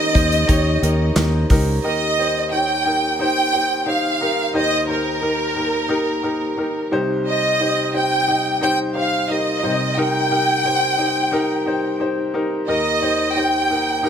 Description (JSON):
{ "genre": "piano-driven pop", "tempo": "88 BPM", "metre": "4/4", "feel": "straight", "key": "Eb mixolydian", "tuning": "A4 = 440 Hz", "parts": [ { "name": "warm symphonic violin section", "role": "melody", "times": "0.0-14.1 s", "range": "Bb4 to G5", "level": "-19 LUFS", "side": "right 1 dB", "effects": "none" }, { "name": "clear baby grand piano", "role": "accompaniment", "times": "0.0-14.1 s", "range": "C2 to Eb5", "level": "-21 LUFS", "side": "left 1 dB", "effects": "none" }, { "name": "airy breathy pad", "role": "sustained chords", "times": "0.0-1.8 s", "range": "Eb3 to G4", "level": "-32 LUFS", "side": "equal", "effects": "none" }, { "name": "fingered electric bass", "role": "bass", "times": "0.1-1.8 s", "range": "Db2 to Eb2", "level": "-19 LUFS", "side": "equal", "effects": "none" }, { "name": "natural country drum kit", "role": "drums", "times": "0.2-1.7 s", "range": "handclaps, hi-hat, kick drum, snare drum", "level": "-20 LUFS", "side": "equal", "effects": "none" }, { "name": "group handclap", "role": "percussion", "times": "1.2-1.3 s", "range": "none", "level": "-34 LUFS", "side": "right 4 dB", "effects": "none" } ], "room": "light reverb, small room ambience", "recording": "none", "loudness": "-17 LUFS", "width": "side -8 dB against mid", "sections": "0.0-1.8 A section; 1.8-14.1 B section", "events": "none", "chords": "0.0 Eb7; 1.8 Eb; 6.9 Cm; 12.7 Eb" }